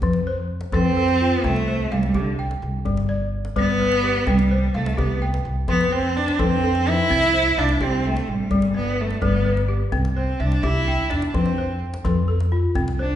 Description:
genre	west african traditional, West African string and xylophone music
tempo	85 BPM (dotted quarters)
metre	12/8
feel	straight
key	F lydian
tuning	A4 = 440 Hz
part	balafon	arpeggios	0.0-13.2 s	F3 to G5	-25 LUFS	left 3 dB	none
part	upright bass	bass	0.0-13.2 s	G1 to F2	-24 LUFS	equal	none
part	djembe	percussion	0.0-13.0 s	none	-29 LUFS	equal	none
part	rich cello	melody	0.7-13.2 s	D3 to E4	-21 LUFS	right 2 dB	none
room	wet recital hall reverb, RT60 1.6 s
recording	recorded in a church or concert hall, nothing above 10.5 kHz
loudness	-18 LUFS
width	side -11 dB against mid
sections	0.0-13.2 A section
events	cello solo 0.0-13.2; drum fill 10.8-11.3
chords	0.0 F; 1.4 C5; 2.9 G; 4.3 C5; 5.7 F; 7.1 C; 8.5 G; 9.9 C; 11.3 F

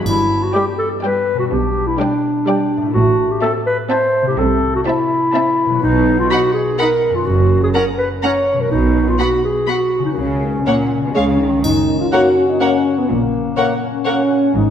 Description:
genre	cinematic, playful, whimsical film cue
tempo	124 BPM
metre	3/4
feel	straight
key	G major, F# major from 5.8 s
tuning	A4 = 442 Hz
part	warm studio viola section	accompaniment	0.0-14.1 s	G3 to A#4	-25 LUFS	right 2 dB	none
part	concert harp	arpeggios	0.0-14.7 s	F#2 to B4	-22 LUFS	left 7 dB	none
part	mellow clarinet	second line	0.1-14.2 s	C#4 to C#5	-17 LUFS	equal	none
part	clear chamber double bass section	bass	0.1-14.7 s	F#1 to C#2	-22 LUFS	right 3 dB	none
part	rich studio cello section	bass	0.1-14.7 s	F#2 to D#3	-21 LUFS	right 3 dB	none
part	triangle	percussion	0.1-1.0, 11.6-12.6 s	none	-30 LUFS	left 1 dB	none
part	rich chamber violin section	second line	0.5-14.1 s	C#5 to F#5	-26 LUFS	left 2 dB	none
part	rich symphonic violin section	melody	0.6-14.1 s	E#5 to B5	-26 LUFS	left 2 dB	none
part	warm French horn section	sustained chords	11.2-14.7 s	A#3 to F#4	-16 LUFS	equal	none
part	warm oboe	second line	12.1-14.2 s	F#5	-25 LUFS	left 1 dB	none
part	mellow bassoon	accompaniment	12.1-14.2 s	A#3	-25 LUFS	right 2 dB	none
room	wet scoring stage reverb, RT60 1.8 s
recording	none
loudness	-14 LUFS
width	side -9 dB against mid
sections	0.1-11.6 A section; 11.6-14.7 B section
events	none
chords	0.1 G; 1.5 G/B; 3.0 Am; 4.4 Am/C; 5.8 B; 7.3 F#; 8.7 B5; 10.2 F#/C#; 11.2 C#; 11.6 F#; 13.1 F#/A#

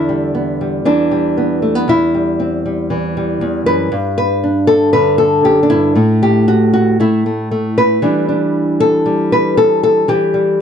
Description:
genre	folk, solo fingerstyle acoustic guitar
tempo	117 BPM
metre	4/4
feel	straight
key	unclear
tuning	A4 = 440 Hz
part	nylon-string guitar	solo	0.0-10.6 s	E2 to B4	-12 LUFS	equal	none
room	light reverb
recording	dry, close 1970s-style studio recording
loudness	-12 LUFS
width	side -8 dB against mid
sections	0.0-10.6 A section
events	none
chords	0.0 Em7; 1.9 C/E; 3.9 G; 6.0 N.C.; 8.0 Em7; 10.1 Em

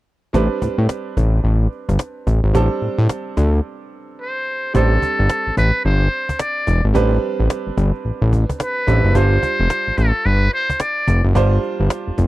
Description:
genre	R&B, new jack swing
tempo	109 BPM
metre	4/4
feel	swing 61% on 16ths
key	A minor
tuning	A4 = 442 Hz
part	bright grand piano	accompaniment	0.3-12.3 s	G3 to C5	-24 LUFS	right 5 dB	none
part	fat analog bass	bass	0.3-12.3 s	E1 to A2	-15 LUFS	equal	none
part	cajon	drums	0.3-12.3 s	none	-24 LUFS	equal	none
part	trumpet with metal mute	melody	4.2-11.2 s	A4 to D5	-20 LUFS	equal	slapback echo
room	little or no reverb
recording	dry, close 1970s-style studio recording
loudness	-15 LUFS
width	side -17 dB against mid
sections	0.3-4.7 A section; 4.7-12.3 B section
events	break 3.6-4.7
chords	0.3 Am11; 9.2 G7sus4

